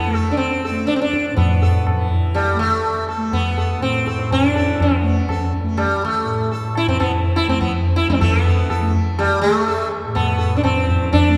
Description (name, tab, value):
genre	indian classical, Hindustani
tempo	123 BPM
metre	7/4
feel	straight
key	A raga darbari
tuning	A4 = 441 Hz
part	sitar	melody	0.0-11.4 s	G3 to A4	-22 LUFS	equal	none
part	tanpura	drone	0.0-11.4 s	A2 to A3	-28 LUFS	equal	none
part	tabla	percussion	0.4-11.3 s	none	-22 LUFS	equal	none
room	wet church reverb, RT60 3.2 s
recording	recorded in a church or concert hall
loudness	-18 LUFS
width	mono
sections	0.0-8.2 A section; 8.2-11.4 B section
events	none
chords	none